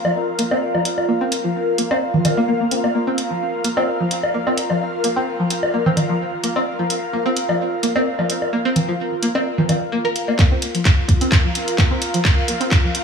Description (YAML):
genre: minimal techno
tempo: 129 BPM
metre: 4/4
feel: swing 54% on 16ths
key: unclear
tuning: A4 = 440 Hz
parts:
  - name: string-like resonator pluck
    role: riff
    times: 0.0-12.9 s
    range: F3 to Bb4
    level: -22 LUFS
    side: equal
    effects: chorus, phaser, sidechain pumping, digital delay
  - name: woodblock and congas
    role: percussion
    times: 0.0-10.4 s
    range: none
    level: -22 LUFS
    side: equal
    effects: digital delay
  - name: airy breathy pad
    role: texture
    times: 0.0-13.0 s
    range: F4 to F5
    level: -23 LUFS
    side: equal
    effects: chorus, phaser, sidechain pumping
  - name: garage drum kit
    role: drums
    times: 0.4-13.0 s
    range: handclaps, hi-hat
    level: -22 LUFS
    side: equal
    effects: none
  - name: electronic kick drum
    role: drums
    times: 10.4-12.8 s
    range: none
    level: -15 LUFS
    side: equal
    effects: none
room: moderate lush hall reverb, RT60 1.9 s, digital ambience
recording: small room ambience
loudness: -17 LUFS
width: side -6 dB against mid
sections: 0.0-10.4 A section; 10.4-13.0 B section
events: filter sweep on synth pluck 0.0-10.4, 10.4-13.0; build-up 10.4-13.0; drum fill 10.4-13.0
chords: 0.0 Bb5